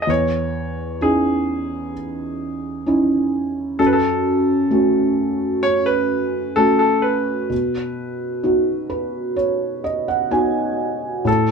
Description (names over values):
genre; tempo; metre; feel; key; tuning
pop; 64 BPM; 4/4; straight; unclear; A4 = 440 Hz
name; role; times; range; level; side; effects
clear concert grand piano; melody; 0.0-11.5 s; G#4 to D#5; -21 LUFS; equal; none
felt-muted upright piano; accompaniment; 0.0-11.5 s; E2 to G#5; -19 LUFS; right 1 dB; none
room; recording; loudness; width
wet small room reverb, RT60 0.5 s; band playing live in one room; -17 LUFS; side -5 dB against mid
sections
0.0-11.3 A section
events
felt piano fill 8.4-11.3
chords
0.1 C#madd9/E; 3.8 F#m; 7.5 B